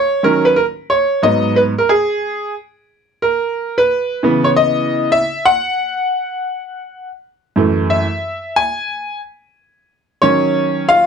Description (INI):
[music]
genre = hip hop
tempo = 90 BPM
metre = 4/4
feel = swing 65% on 16ths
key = Eb phrygian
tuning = A4 = 440 Hz
[part]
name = bright grand piano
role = solo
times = 0.0-11.1 s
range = Gb2 to Ab5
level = -14 LUFS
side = equal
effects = none
[sound]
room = moderate small room reverb, RT60 0.5 s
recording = none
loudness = -14 LUFS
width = side -6 dB against mid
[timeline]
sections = 0.0-9.2 A section; 9.2-11.1 B section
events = grand piano solo 0.0-9.2, 9.2-11.1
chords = 0.0 Ebm7; 1.2 Abm7; 3.9 Dbm7; 6.6 Gbm9; 9.2 Ebm9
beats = 0.56 | 1.23 1.90 2.56 3.23 | 3.90 4.56 5.23 5.90 | 6.56 7.23 7.90 8.56 | 9.23 9.90 10.56